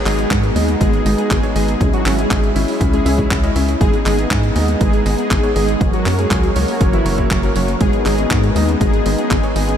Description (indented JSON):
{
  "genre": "italo disco",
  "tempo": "120 BPM",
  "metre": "4/4",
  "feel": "straight",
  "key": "G# minor",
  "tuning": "A4 = 440 Hz",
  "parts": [
    { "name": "analog synth brass", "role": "melody", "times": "0.0-9.8 s", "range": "E3 to G#4", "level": "-22 LUFS", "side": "equal", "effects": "chorus, tape echo" },
    { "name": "warm analog pad", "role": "sustained chords", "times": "0.0-9.8 s", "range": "F#3 to C#5", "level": "-22 LUFS", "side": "left 2 dB", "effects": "chorus" },
    { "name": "warbly dusty pluck", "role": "arpeggios", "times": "0.1-9.7 s", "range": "F#3 to C#5", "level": "-25 LUFS", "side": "left 1 dB", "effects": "none" },
    { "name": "bright electric grand piano", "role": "stabs", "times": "0.1-9.7 s", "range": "A#3 to E5", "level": "-25 LUFS", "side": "right 2 dB", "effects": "none" },
    { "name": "tight sequencer bass", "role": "bass", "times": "0.1-9.8 s", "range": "F#1 to G#2", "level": "-19 LUFS", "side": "equal", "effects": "none" },
    { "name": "clean 12-bit digital drum machine", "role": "drums", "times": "0.1-9.8 s", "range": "handclaps, hi-hat", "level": "-24 LUFS", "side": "right 1 dB", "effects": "studio reverb" },
    { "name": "electronic kick drum", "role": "drums", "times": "0.3-9.4 s", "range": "none", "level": "-18 LUFS", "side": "equal", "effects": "studio reverb" }
  ],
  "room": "moderate huge ambient reverb, RT60 8.5 s",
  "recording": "dreamy mix soaked in reverb",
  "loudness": "-13 LUFS",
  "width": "side -9 dB against mid",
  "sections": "0.0-9.8 A section",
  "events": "none",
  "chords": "0.0 G#m; 1.8 C#m; 3.8 G#m; 5.8 F#; 7.8 G#m"
}